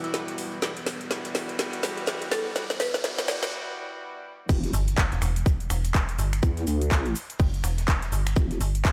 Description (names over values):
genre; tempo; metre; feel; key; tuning
bass house; 124 BPM; 4/4; swing 59% on 16ths; E minor; A4 = 440 Hz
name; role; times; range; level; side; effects
marimba with hard mallets; melody; 0.0-3.5 s; E4 to D5; -36 LUFS; equal; tape echo
deep dark ambient pad; sustained chords; 0.0-3.5 s; E3 to F#4; -46 LUFS; equal; chorus, built-in reverb, sidechain pumping
warm horn section; stabs; 0.0-4.5 s; G3 to F#4; -38 LUFS; equal; sidechain pumping, tape echo
garage drum kit; drums; 0.0-8.9 s; crash cymbal, finger snaps, handclaps, hi-hat, shaker, snare drum; -32 LUFS; equal; studio reverb
modern studio drum kit; drums; 0.0-8.9 s; hi-hat, shaker, snare drum; -45 LUFS; equal; none
riser and impact; sound effects; 0.0-6.4 s; none; -41 LUFS; equal; none
vowel-sweep wobble bass; bass; 4.5-8.6 s; E1 to E2; -29 LUFS; equal; chorus, overdrive, sidechain pumping
electronic kick drum; drums; 4.5-8.9 s; none; -24 LUFS; equal; studio reverb
metallic FM bass; bass; 4.7-8.9 s; E1 to G1; -28 LUFS; equal; sidechain pumping
room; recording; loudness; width
light reverb, studio ambience; high-pass filter; -27 LUFS; mono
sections
0.0-4.5 A section; 4.5-8.9 B section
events
build-up 0.0-4.5; drum fill 0.0-3.5; riser 0.0-3.5; break 3.5-4.5; drop 4.5-8.9; impact 4.5-6.4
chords
0.0 Emadd9; 4.5 Em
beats
0.14 | 0.62 1.11 1.59 2.07 | 2.56 3.04 3.52 4.01 | 4.49 4.98 5.46 5.95 | 6.43 6.91 7.40 7.88 | 8.36 8.85